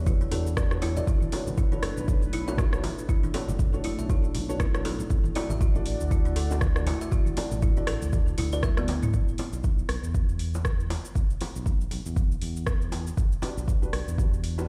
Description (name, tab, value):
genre	afro house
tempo	119 BPM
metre	4/4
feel	swing 57% on 16ths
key	E dorian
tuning	A4 = 440 Hz
part	dark analog pad	sustained chords	0.0-9.1 s	G3 to D5	-42 LUFS	equal	chorus, phaser, sidechain pumping
part	felt-muted upright piano	stabs	0.0-8.9, 13.4-14.7 s	D4 to D5	-39 LUFS	equal	sidechain pumping, tape echo
part	smooth synth bass	bass	0.0-14.7 s	F#1 to E2	-33 LUFS	equal	sidechain pumping
part	kalimba	arpeggios	0.1-9.1 s	B3 to E5	-38 LUFS	equal	sidechain pumping, tape echo
part	afro-pop drum kit	drums	0.1-14.7 s	hi-hat, rim click, shaker, toms	-38 LUFS	equal	overdrive
part	electronic kick drum	drums	0.1-14.3 s	none	-28 LUFS	equal	overdrive
part	congas	percussion	0.1-9.1 s	none	-39 LUFS	equal	none
part	bongos	percussion	0.8-14.7 s	none	-41 LUFS	equal	none
room	studio ambience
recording	played on a big sound system in a bare room, large studio reverb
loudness	-27 LUFS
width	mono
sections	0.0-9.1 A section; 9.1-14.7 B section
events	drop 0.0-9.1; drum fill 8.6-9.1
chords	0.0 Em7; 1.1 Bm7; 5.1 D; 9.1 Em7